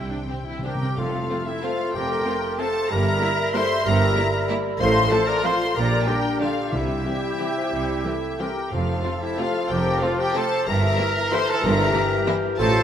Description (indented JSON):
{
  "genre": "classical, orchestral ballroom waltz",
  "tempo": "186 BPM",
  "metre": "3/4",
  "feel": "uneven beats, rubato",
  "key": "F major",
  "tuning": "A4 = 440 Hz",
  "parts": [
    { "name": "clear studio violin section", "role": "melody", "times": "0.0-12.8 s", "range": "E5 to C6", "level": "-29 LUFS", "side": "left 5 dB", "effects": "none" },
    { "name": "rich symphonic viola section", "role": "accompaniment", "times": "0.0-12.3 s", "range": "C3 to E4", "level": "-34 LUFS", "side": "right 2 dB", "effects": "none" },
    { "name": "bright symphonic cello section", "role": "bass", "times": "0.0-12.8 s", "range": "F2 to C3", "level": "-28 LUFS", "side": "right 2 dB", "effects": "none" },
    { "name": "clear symphonic double bass section", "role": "bass", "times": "0.0-12.8 s", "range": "F1 to C2", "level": "-28 LUFS", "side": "right 2 dB", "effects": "none" },
    { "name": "timpani", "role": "percussion", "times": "0.0-1.4, 6.7-9.2 s", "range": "F2 to C3", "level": "-32 LUFS", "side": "equal", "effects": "none" },
    { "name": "warm symphonic violin section", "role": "second line", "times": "0.3-12.4 s", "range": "Bb3 to C5", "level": "-35 LUFS", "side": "left 2 dB", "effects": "none" },
    { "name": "mellow clarinet", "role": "second line", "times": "0.6-12.8 s", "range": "E4 to C5", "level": "-31 LUFS", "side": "left 1 dB", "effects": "none" },
    { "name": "mellow trumpet section", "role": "stabs", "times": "0.6-12.8 s", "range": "E4 to C5", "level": "-28 LUFS", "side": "equal", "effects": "none" },
    { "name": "large flute ensemble", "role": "second line", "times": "0.7-12.8 s", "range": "G4 to F5", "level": "-29 LUFS", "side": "equal", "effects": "none" },
    { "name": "mellow cor anglais", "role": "second line", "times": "1.0-12.8 s", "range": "E4 to C5", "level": "-34 LUFS", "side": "right 2 dB", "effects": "none" },
    { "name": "dark bassoon", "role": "accompaniment", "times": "1.0-12.8 s", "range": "E3 to A3", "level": "-31 LUFS", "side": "right 1 dB", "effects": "none" },
    { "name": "mellow French horn section", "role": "sustained chords", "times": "1.0-12.8 s", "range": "D4 to C5", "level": "-29 LUFS", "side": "left 3 dB", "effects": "none" }
  ],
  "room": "wet concert hall reverb, RT60 2.0 s",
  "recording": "none",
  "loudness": "-20 LUFS",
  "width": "side -9 dB against mid",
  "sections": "1.0-12.8 A section",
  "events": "timpani fill 0.0-1.0",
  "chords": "0.0 C; 1.0 F; 2.9 Edim/G; 4.8 F/A; 5.8 Gm/Bb; 6.7 C; 8.7 F; 10.7 Edim/G",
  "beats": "0.28 0.64 | 0.97 1.29 1.63 | 1.94 2.26 2.59 | 2.91 3.22 3.55 | 3.86 4.17 4.50 | 4.81 5.12 5.45 | 5.76 6.07 6.41 | 6.73 7.06 7.40 | 7.72 8.05 8.40 | 8.72 9.05 9.38 | 9.70 10.02 10.36 | 10.67 10.99 11.33 | 11.64 11.95 12.28 | 12.59"
}